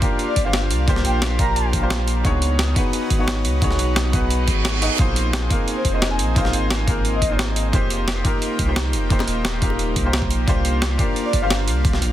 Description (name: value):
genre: liquid drum and bass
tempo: 175 BPM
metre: 4/4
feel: straight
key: unclear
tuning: A4 = 442 Hz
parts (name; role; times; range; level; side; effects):
- clear baby grand piano; accompaniment; 0.0-11.9 s; Bb3 to Eb5; -25 LUFS; left 1 dB; dub echo
- airy breathy pad; sustained chords; 0.0-12.1 s; Bb3 to Ab4; -29 LUFS; right 1 dB; chorus, sidechain pumping
- breakbeat sampler-style drum kit; drums; 0.0-12.1 s; hi-hat, snare drum; -25 LUFS; right 1 dB; none
- electronic kick drum; drums; 0.0-11.9 s; none; -21 LUFS; equal; none
- breathy flute-like synth lead; melody; 0.3-1.6, 5.8-7.4, 11.2-11.6 s; C5 to Bb5; -28 LUFS; left 1 dB; analog chorus, ping-pong delay
- warm sub bass; bass; 0.4-12.1 s; Eb1 to Db2; -22 LUFS; equal; none
- reverse cymbal; sound effects; 4.4-5.0 s; none; -27 LUFS; right 5 dB; none
- bongos; percussion; 9.2-9.8 s; none; -33 LUFS; left 9 dB; none
room: little or no reverb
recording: dense, heavily limited modern master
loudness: -17 LUFS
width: side -12 dB against mid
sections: 0.0-12.1 A section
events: reverse cymbal 4.4-5.0; kick drops out 4.6-5.0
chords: 0.0 C9sus4; 2.2 Db9sus4; 5.0 Bb9sus4; 7.7 F9sus4; 10.5 C9sus4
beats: 0.19 0.53 | 0.88 1.22 1.56 1.91 | 2.25 2.59 2.93 3.28 | 3.62 3.96 4.30 4.65 | 4.99 5.33 5.68 6.02 | 6.36 6.71 7.05 7.39 | 7.73 8.08 8.42 8.76 | 9.11 9.45 9.79 10.13 | 10.48 10.82 11.16 11.51 | 11.85